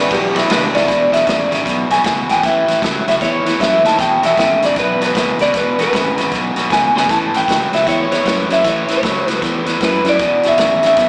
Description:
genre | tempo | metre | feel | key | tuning
electric blues shuffle | 155 BPM | 4/4 | swing 63% on 8ths | E mixolydian | A4 = 440 Hz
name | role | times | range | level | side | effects
electric guitar through a small old amp | melody | 0.0-11.1 s | D4 to B5 | -17 LUFS | equal | slapback echo, analog delay
overdriven electric guitar | riff | 0.0-11.1 s | E2 to F#3 | -21 LUFS | equal | none
fingered electric bass | bass | 0.0-11.1 s | E1 to F#2 | -27 LUFS | equal | none
vintage drum kit | drums | 0.1-11.1 s | hi-hat, kick drum, ride cymbal, snare drum, toms | -24 LUFS | equal | none
room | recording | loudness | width
light reverb | live gig heard through the venue's PA, recital hall reverb, small speaker sound | -15 LUFS | mono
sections
0.9-11.1 A section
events
drum fill 6.9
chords
0.0 E7(no3); 0.9 E; 2.4 A; 4.0 E; 7.1 A; 10.2 E

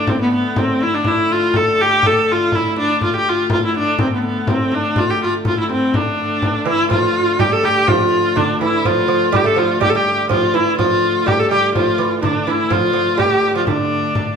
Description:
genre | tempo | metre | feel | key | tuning
medieval dance | 124 BPM | 2/4 | straight | D minor | A4 = 443 Hz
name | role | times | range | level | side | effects
clear viola | melody | 0.0-14.4 s | B3 to A4 | -16 LUFS | left 1 dB | none
dark hurdy-gurdy | drone | 0.0-14.4 s | D3 to A3 | -25 LUFS | left 2 dB | none
frame drum | percussion | 0.1-14.4 s | none | -23 LUFS | left 1 dB | none
lute | second line | 6.7-14.4 s | D3 to A3 | -20 LUFS | right 6 dB | none
room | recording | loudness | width
wet large studio reverb, RT60 1.2 s | band playing live in one room | -14 LUFS | side -6 dB against mid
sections
0.0-6.9 A section; 6.9-14.4 B section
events
none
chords
none

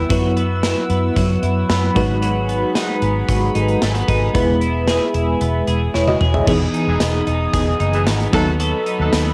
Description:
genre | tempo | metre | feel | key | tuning
1980s-style pop | 113 BPM | 4/4 | straight | unclear | A4 = 439 Hz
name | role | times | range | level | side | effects
FM electric piano with tremolo | accompaniment | 0.0-9.3 s | E3 to B5 | -23 LUFS | equal | cassette tape
chorused pulse-width pad | sustained chords | 0.0-9.3 s | G#4 to E6 | -29 LUFS | equal | cassette tape
twelve-string electric guitar | riff | 0.0-9.3 s | F#3 to A4 | -27 LUFS | equal | lush chorus, cassette tape
vintage muted fingered electric bass | bass | 0.0-9.3 s | E1 to F#2 | -22 LUFS | equal | none
gated 80s drum kit | drums | 0.1-9.3 s | crash cymbal, hi-hat, kick drum, snare drum, tambourine, toms | -24 LUFS | equal | cassette tape
cranked stack guitar | accompaniment | 6.5-9.3 s | E2 to B3 | -34 LUFS | equal | overdrive, subtle chorus, cassette tape
mellow horn section | stabs | 6.9-9.1 s | E3 to A4 | -28 LUFS | equal | tube saturation, cassette tape, plate reverb
room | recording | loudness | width
light reverb | home recording on cassette | -18 LUFS | mono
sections
0.0-6.5 A section; 6.5-9.3 B section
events
FM electric piano fill 1.4-2.2; drum fill 5.9-6.5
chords
0.1 Bsus4/F#; 2.0 G#m7; 4.3 E; 6.5 Emaj7; 8.3 B7/D#

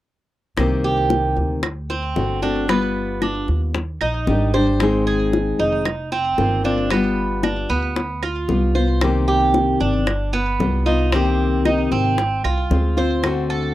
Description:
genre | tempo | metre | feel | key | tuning
latin, Cuban son and guajira | 114 BPM | 4/4 | straight | C minor | A4 = 440 Hz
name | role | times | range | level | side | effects
nylon-string guitar | accompaniment | 0.6-13.7 s | C3 to Ab4 | -21 LUFS | left 3 dB | none
upright bass | bass | 0.6-13.7 s | F1 to Eb2 | -22 LUFS | right 1 dB | none
bongos | percussion | 0.6-13.5 s | none | -24 LUFS | left 4 dB | none
claves | percussion | 0.6-13.5 s | none | -28 LUFS | right 10 dB | none
Cuban tres | arpeggios | 0.8-13.7 s | B3 to C5 | -22 LUFS | right 3 dB | slapback echo
room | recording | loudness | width
little or no reverb | dry, close 1970s-style studio recording | -17 LUFS | side -14 dB against mid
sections
0.6-13.7 A section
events
none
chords
0.6 Cm7; 1.6 D7; 2.7 G7; 3.7 Ebmaj7; 4.8 Ab; 5.9 F7sus4; 6.9 G7; 9.0 Cm7; 10.1 G7; 11.1 Cm7; 12.2 Ab6; 13.2 D7

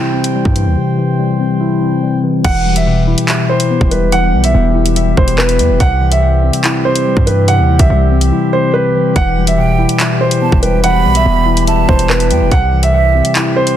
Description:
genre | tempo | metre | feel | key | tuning
hip hop, drill | 143 BPM | 4/4 | half-time | E minor | A4 = 440 Hz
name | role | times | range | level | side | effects
mellow tine electric piano | accompaniment | 0.0-13.8 s | B2 to E5 | -15 LUFS | left 4 dB | phaser
dark brass ensemble | sustained chords | 0.0-13.8 s | B2 to G5 | -24 LUFS | right 2 dB | none
drill drum kit | drums | 0.2-13.8 s | crash cymbal, handclaps, hi-hat, kick drum | -16 LUFS | equal | none
hard-hitting 808-style bass | bass | 0.5-13.2 s | E1 to G2 | -14 LUFS | right 1 dB | none
dark grand piano | melody | 2.4-13.8 s | B4 to F#5 | -16 LUFS | right 2 dB | ping-pong delay
breathy hollow jazz flute | second line | 9.6-13.3 s | E5 to B5 | -18 LUFS | right 7 dB | ping-pong delay
room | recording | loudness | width
light reverb, studio reverb | dense, heavily limited modern master | -10 LUFS | side -11 dB against mid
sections
0.0-2.4 A section; 2.4-13.8 B section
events
break 8.3-9.2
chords
0.0 C; 2.4 Em; 5.8 C; 9.2 Em; 12.5 C

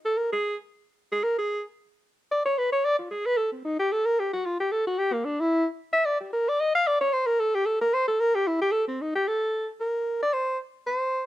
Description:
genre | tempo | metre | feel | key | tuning
jazz | 224 BPM | 4/4 | swing 59% on 8ths | unclear | A4 = 440 Hz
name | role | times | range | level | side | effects
breathy alto saxophone | solo | 0.1-11.3 s | Bb3 to F5 | -23 LUFS | equal | none
room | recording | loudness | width
little or no reverb | close, detailed microphones | -23 LUFS | side -14 dB against mid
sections
0.0-8.7 A section; 8.7-11.3 A section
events
alto saxophone solo 0.0-11.3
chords
none

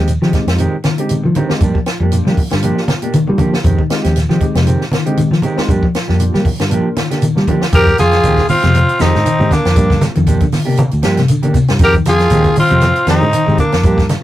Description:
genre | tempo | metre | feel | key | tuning
afrobeat | 118 BPM | 4/4 | swing 55% on 16ths | F dorian | A4 = 440 Hz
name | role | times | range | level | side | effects
tine electric piano | accompaniment | 0.0-7.6 s | Ab3 to Bb4 | -22 LUFS | left 1 dB | fast stereo tremolo
clean electric guitar | arpeggios | 0.0-14.0 s | Bb2 to G3 | -18 LUFS | left 3 dB | none
mellow electric guitar | stabs | 0.0-14.0 s | Eb3 to G4 | -19 LUFS | right 3 dB | none
fingered electric bass | bass | 0.0-14.1 s | D2 to G3 | -15 LUFS | equal | none
compact cocktail drum kit | drums | 0.1-14.2 s | hi-hat, kick drum, snare drum | -17 LUFS | equal | none
congas | percussion | 0.1-14.2 s | none | -19 LUFS | equal | none
shekere | percussion | 0.1-14.2 s | none | -23 LUFS | right 1 dB | none
growling tenor saxophone | melody | 7.7-14.1 s | D4 to Bb4 | -14 LUFS | left 1 dB | none
warm trumpet | second line | 7.7-14.1 s | Bb3 to G4 | -19 LUFS | right 3 dB | none
room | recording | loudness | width
moderate booth ambience, RT60 0.2 s | rough rehearsal-room recording, warm saturation | -11 LUFS | side -14 dB against mid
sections
0.0-7.7 A section; 7.7-14.2 B section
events
none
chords
0.0 Fm9; 1.6 Gm7; 3.6 Fm9; 5.7 Gm7; 7.7 Fm9; 9.8 Gm7; 11.8 Fm9

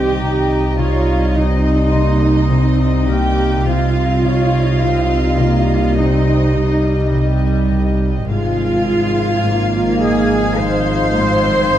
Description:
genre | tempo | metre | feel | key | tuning
cinematic, suspense film score | 52 BPM | 4/4 | straight | unclear | A4 = 438 Hz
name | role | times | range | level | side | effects
warm studio violin section | melody | 0.0-11.8 s | Eb5 to F5 | -28 LUFS | left 3 dB | none
clear studio violin section | second line | 0.0-11.8 s | Eb5 to C6 | -25 LUFS | left 2 dB | none
warm studio viola section | accompaniment | 0.0-11.8 s | G3 to Db5 | -22 LUFS | right 1 dB | none
mellow French horn section | sustained chords | 0.0-11.8 s | F3 to Eb4 | -22 LUFS | left 1 dB | none
concert harp | riff | 0.0-11.8 s | Ab2 to C3 | -25 LUFS | left 4 dB | none
dark studio double bass section | bass | 0.0-11.8 s | Ab1 to C2 | -18 LUFS | right 1 dB | none
warm studio cello section | bass | 0.0-11.8 s | Eb4 to C5 | -19 LUFS | right 1 dB | none
bowed-like drone | drone | 0.5-11.8 s | Ab1 to C2 | -22 LUFS | equal | none
vibraphone with medium mallets | texture | 0.0-11.8 s | Eb5 to F6 | -30 LUFS | right 1 dB | none
rich studio violin section | texture | 8.3-11.8 s | Ab6 to C7 | -32 LUFS | left 3 dB | none
room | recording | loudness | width
moderate scoring stage reverb, RT60 1.7 s | dark, warm production, vinyl crackle | -13 LUFS | side -11 dB against mid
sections
0.0-11.8 A section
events
none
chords
0.0 Cm; 8.3 Ab6

